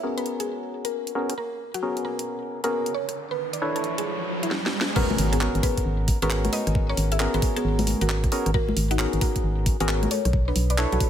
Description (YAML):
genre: UK garage, two-step garage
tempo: 134 BPM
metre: 4/4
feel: swing 64% on 16ths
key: G# minor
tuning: A4 = 440 Hz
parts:
  - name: mallet-like synth pluck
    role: melody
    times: 0.0-11.1 s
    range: B3 to E5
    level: -30 LUFS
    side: left 1 dB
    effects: chorus, phaser, ping-pong delay
  - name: percussive organ stab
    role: stabs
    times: 0.0-11.1 s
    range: B3 to C#5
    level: -29 LUFS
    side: left 1 dB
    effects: chorus, dub echo
  - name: garage drum kit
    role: drums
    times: 0.2-11.1 s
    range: congas, crash cymbal, handclaps, hi-hat, rim click, snare drum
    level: -28 LUFS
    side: left 1 dB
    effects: none
  - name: riser and impact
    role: sound effects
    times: 2.8-6.8 s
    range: none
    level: -32 LUFS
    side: right 1 dB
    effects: none
  - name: electronic kick drum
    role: drums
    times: 5.0-11.1 s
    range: none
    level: -24 LUFS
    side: equal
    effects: none
  - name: organ-like FM bass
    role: bass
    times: 5.2-11.0 s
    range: G#1 to B1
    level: -24 LUFS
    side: equal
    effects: none
room: light reverb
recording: none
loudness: -22 LUFS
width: side -10 dB against mid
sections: 0.0-5.0 A section; 5.0-11.1 B section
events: filter sweep on synth stab 0.0-5.0; riser 2.8-5.0; drum fill 4.5-5.0; drop 5.0-11.1; impact 5.0-6.8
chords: 0.0 G#m11; 2.9 Bm11; 5.0 G#m11; 10.1 Bm11